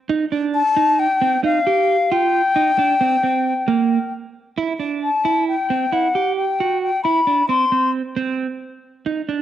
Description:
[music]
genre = progressive instrumental, progressive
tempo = 134 BPM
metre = 5/4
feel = straight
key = unclear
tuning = A4 = 436 Hz
[part]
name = clean electric guitar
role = arpeggios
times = 0.1-9.4 s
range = Bb3 to G4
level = -21 LUFS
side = right 6 dB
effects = cassette tape
[part]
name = bright wooden flute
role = melody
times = 0.6-7.9 s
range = F5 to C6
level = -17 LUFS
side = left 4 dB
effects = cassette tape
[sound]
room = moderate spring reverb, RT60 1.5 s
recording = home recording on cassette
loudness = -16 LUFS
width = side -11 dB against mid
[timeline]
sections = 0.0-4.6 A section; 4.6-9.4 B section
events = none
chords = 0.1 Eb; 4.6 C

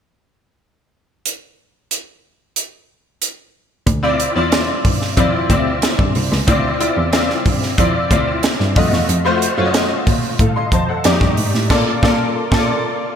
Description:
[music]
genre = polished 1980s jazz-funk pop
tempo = 92 BPM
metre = 4/4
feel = straight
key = D minor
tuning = A4 = 440 Hz
[part]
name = crisp fusion drum kit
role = drums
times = 1.3-12.7 s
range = crash cymbal, hi-hat, kick drum, snare drum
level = -18 LUFS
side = right 1 dB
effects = gated reverb
[part]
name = warm cello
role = bass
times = 3.9-12.7 s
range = C2 to Bb2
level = -20 LUFS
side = right 1 dB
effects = none
[part]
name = bright grand piano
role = accompaniment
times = 4.0-13.2 s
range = A3 to C6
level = -17 LUFS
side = left 2 dB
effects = ensemble chorus
[sound]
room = light reverb, small room ambience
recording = bright 1980s-style digital production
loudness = -14 LUFS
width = side -8 dB against mid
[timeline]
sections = 1.3-3.9 A section; 3.9-13.2 B section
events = band accent 11.7-13.2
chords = 1.3 N.C.; 3.9 Dm9; 8.8 F7b9; 11.0 F13; 11.7 Bbmaj7

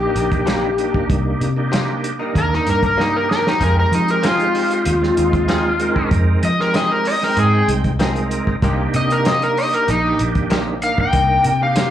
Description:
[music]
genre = straight-eighth soul blues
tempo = 96 BPM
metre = 4/4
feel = straight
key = C minor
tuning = A4 = 441 Hz
[part]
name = overdriven slide guitar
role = melody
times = 0.0-11.9 s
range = Eb4 to G5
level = -18 LUFS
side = left 2 dB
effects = slapback echo
[part]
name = bright tonewheel organ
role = accompaniment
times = 0.0-11.9 s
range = Ab3 to G5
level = -23 LUFS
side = right 5 dB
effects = slow rotary speaker, chorus vibrato, slapback echo
[part]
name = vintage muted fingered electric bass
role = bass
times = 0.0-11.9 s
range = Bb1 to F3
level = -20 LUFS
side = equal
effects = none
[part]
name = warm soul drum kit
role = drums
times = 0.2-11.9 s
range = hi-hat, kick drum, snare drum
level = -22 LUFS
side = equal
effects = none
[part]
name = direct-recorded clean electric guitar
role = stabs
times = 0.5-11.9 s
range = C3 to Ab4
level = -27 LUFS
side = left 5 dB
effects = ensemble chorus, slapback echo
[sound]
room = light reverb, small room ambience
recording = live gig heard through the venue's PA, club reverb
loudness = -15 LUFS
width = side -11 dB against mid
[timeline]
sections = 0.0-11.9 A section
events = electric slide guitar solo 0.0-11.9; drum fill 3.0-3.6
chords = 0.0 Cm7; 3.6 Fm7; 8.6 Cm7

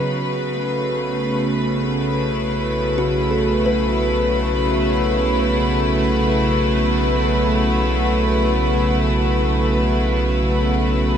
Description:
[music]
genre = ambient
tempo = free time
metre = none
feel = none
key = unclear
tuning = A4 = 440 Hz
[part]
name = rich symphonic string section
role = sustained chords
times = 0.0-11.2 s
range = C#3 to B4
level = -18 LUFS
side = equal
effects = shimmer reverb
[part]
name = round analog bass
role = bass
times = 0.0-11.2 s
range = B1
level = -23 LUFS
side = equal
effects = tube saturation
[part]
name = analog drone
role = drone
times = 0.0-11.2 s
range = B3 to F#4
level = -26 LUFS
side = right 1 dB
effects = chorus
[part]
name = kalimba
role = arpeggios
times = 3.0-6.8 s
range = F#4 to B4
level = -27 LUFS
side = equal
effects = none
[sound]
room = wet huge ambient reverb, RT60 7.9 s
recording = none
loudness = -16 LUFS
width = side -8 dB against mid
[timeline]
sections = 0.0-11.2 A section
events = none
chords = 0.1 Aadd9/B

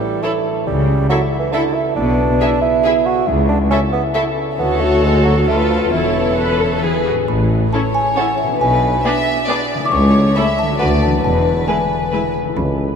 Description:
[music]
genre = cinematic, playful, whimsical film cue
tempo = 136 BPM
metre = 3/4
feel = straight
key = A major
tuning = A4 = 440 Hz
[part]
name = warm bassoon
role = accompaniment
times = 0.0-7.0 s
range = D3 to F#4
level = -19 LUFS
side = right 5 dB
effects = none
[part]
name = concert harp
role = arpeggios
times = 0.0-13.0 s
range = A2 to E5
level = -22 LUFS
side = left 3 dB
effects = none
[part]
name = warm chamber violin section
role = melody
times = 0.2-12.3 s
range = B4 to E5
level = -24 LUFS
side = left 2 dB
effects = none
[part]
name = rich chamber violin section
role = second line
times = 0.2-12.2 s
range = G#4 to D5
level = -24 LUFS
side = right 1 dB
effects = none
[part]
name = rich chamber viola section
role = accompaniment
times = 0.2-12.2 s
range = G#3 to B4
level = -24 LUFS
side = left 2 dB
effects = none
[part]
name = rich chamber cello section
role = bass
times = 0.7-12.9 s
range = C#2 to C#3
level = -21 LUFS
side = equal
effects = none
[part]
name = rich chamber double bass section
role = bass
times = 0.7-12.9 s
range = E1 to D2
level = -22 LUFS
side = equal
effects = none
[part]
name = music box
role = melody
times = 7.3-13.0 s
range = E5 to D6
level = -20 LUFS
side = left 1 dB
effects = none
[part]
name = clear tuba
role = bass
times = 7.3-12.9 s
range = E1 to D2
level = -22 LUFS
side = equal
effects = none
[sound]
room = wet cathedral reverb, RT60 5.3 s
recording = in a vast, echoing space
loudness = -13 LUFS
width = side -6 dB against mid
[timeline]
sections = 0.0-7.3 A section; 7.3-13.0 B section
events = none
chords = 0.0 A; 0.7 A/C#; 2.0 E7/B; 3.3 A/C#; 4.6 Dmaj7; 5.5 Bm7b5/D; 5.9 A/E; 6.8 E; 7.3 A; 8.6 G#dim/B; 9.9 A/C#; 10.8 Bm7/D; 11.2 E

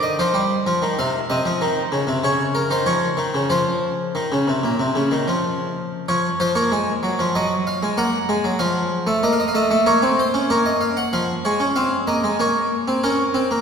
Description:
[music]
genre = classical, baroque-style two-part invention for harpsichord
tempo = 95 BPM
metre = 4/4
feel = straight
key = Bb minor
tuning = A4 = 440 Hz
[part]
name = harpsichord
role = solo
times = 0.0-13.6 s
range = Bb2 to Gb5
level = -18 LUFS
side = equal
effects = none
[sound]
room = wet concert hall reverb, RT60 2.5 s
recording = heard from further back in the room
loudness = -18 LUFS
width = side -6 dB against mid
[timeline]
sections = 0.0-6.1 A section; 6.1-11.1 B section; 11.1-13.6 A section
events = none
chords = 0.0 Cm/Eb; 1.0 F5/C; 2.2 Bbm/Db; 3.5 F5; 6.1 Bbm/F; 7.3 Ebm/Gb; 8.6 F7; 9.9 Bbm; 11.1 Db/F; 12.4 Bbm

